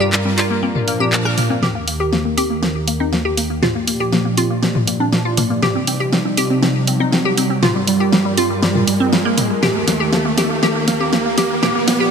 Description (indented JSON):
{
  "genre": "progressive house",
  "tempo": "120 BPM",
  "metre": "4/4",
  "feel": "straight",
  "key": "unclear",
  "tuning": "A4 = 439 Hz",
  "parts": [
    { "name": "wide unison pluck", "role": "melody", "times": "0.0-1.5 s", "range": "D5", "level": "-29 LUFS", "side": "equal", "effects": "ping-pong delay" },
    { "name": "warm analog pad", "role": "sustained chords", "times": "0.0-12.1 s", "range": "Eb2 to D5", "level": "-21 LUFS", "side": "right 1 dB", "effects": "chorus" },
    { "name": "glassy wavetable pluck", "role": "arpeggios", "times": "0.0-12.1 s", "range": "G3 to Bb4", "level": "-19 LUFS", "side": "equal", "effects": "chorus, phaser, ping-pong delay" },
    { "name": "pop drum kit", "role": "drums", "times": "0.1-12.0 s", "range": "handclaps, hi-hat, rim click, snare drum", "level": "-20 LUFS", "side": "equal", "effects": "none" },
    { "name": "electronic congas and toms", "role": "percussion", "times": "0.3-11.7 s", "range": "none", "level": "-23 LUFS", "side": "left 3 dB", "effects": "none" },
    { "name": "riser", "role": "sound effects", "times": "4.1-12.1 s", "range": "none", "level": "-24 LUFS", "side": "right 2 dB", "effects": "none" }
  ],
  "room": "moderate lush hall reverb, RT60 2.0 s, digital ambience",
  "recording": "high-pass filter",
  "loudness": "-14 LUFS",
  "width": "side -6 dB against mid",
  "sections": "0.0-1.6 A section; 1.6-12.1 B section",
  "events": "build-up 1.6-12.1; drum fill 1.6-12.1; filter sweep on synth arpeggio sound 1.6-12.1; filter sweep on analog synth pad 1.6-12.1; riser 4.1-12.1",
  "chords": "0.0 Gm7; 0.6 Bb; 1.6 Eb; 3.6 Bb6; 5.6 Cmadd9; 7.6 Gm7; 9.6 Eb"
}